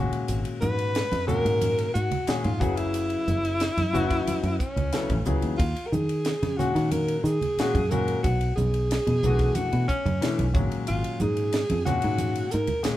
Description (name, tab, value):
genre	electric jazz fusion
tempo	91 BPM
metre	4/4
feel	straight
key	unclear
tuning	A4 = 441 Hz
part	warm grand piano	accompaniment	0.0-13.0 s	Bb2 to A4	-29 LUFS	left 4 dB	none
part	fingered electric bass	bass	0.0-12.9 s	Gb1 to Eb3	-27 LUFS	equal	none
part	tight funk drum kit	drums	0.1-13.0 s	hi-hat, kick drum, ride cymbal, snare drum	-32 LUFS	equal	none
part	breathy alto saxophone	melody	0.6-13.0 s	Db4 to Cb5	-28 LUFS	equal	none
part	congas	percussion	0.6-12.8 s	none	-32 LUFS	right 3 dB	none
room	moderate large studio reverb, RT60 0.9 s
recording	band playing live in one room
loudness	-23 LUFS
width	side -14 dB against mid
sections	0.0-13.0 A section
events	none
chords	0.0 Abm11; 2.6 Gb9sus4; 5.6 Ebm7; 8.2 Bm11; 10.5 Ab9sus4